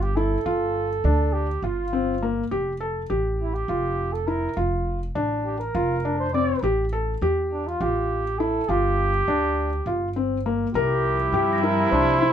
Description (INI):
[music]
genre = contemporary instrumental, chamber music in an uneven meter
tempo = 204 BPM (eighths)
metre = 7/8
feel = straight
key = G dorian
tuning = A4 = 440 Hz
[part]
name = warm flugelhorn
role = melody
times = 0.0-12.3 s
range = D4 to D5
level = -26 LUFS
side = right 2 dB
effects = none
[part]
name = upright bass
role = bass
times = 0.0-12.3 s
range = F1 to G2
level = -27 LUFS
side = right 1 dB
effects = none
[part]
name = felt-muted upright piano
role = arpeggios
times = 0.2-12.3 s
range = Bb3 to Bb4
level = -25 LUFS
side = left 2 dB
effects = none
[part]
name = dark trumpet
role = second line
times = 10.7-12.3 s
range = E4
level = -24 LUFS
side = right 3 dB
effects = none
[part]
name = muted studio string section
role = sustained chords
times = 10.8-12.3 s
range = C3 to G3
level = -28 LUFS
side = left 1 dB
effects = none
[part]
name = celesta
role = texture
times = 11.3-12.3 s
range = G5 to Bb6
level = -30 LUFS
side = left 11 dB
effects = none
[sound]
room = light reverb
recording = none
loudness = -21 LUFS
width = side -9 dB against mid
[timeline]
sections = 0.0-10.7 A section; 10.7-12.3 B section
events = none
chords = 0.0 G7(no3); 2.5 Dmadd11/F; 6.6 A5; 8.7 G7(no3); 10.7 Csus4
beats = 0.16 | 0.46 0.75 1.04 1.34 1.63 1.93 2.22 | 2.51 2.81 3.10 3.39 3.69 3.98 4.28 | 4.57 4.87 5.16 5.45 5.75 6.04 6.33 | 6.63 6.92 7.22 7.51 7.81 8.10 8.39 | 8.69 8.98 9.28 9.57 9.87 10.16 10.45 | 10.75 11.04 11.34 11.63 11.92 12.22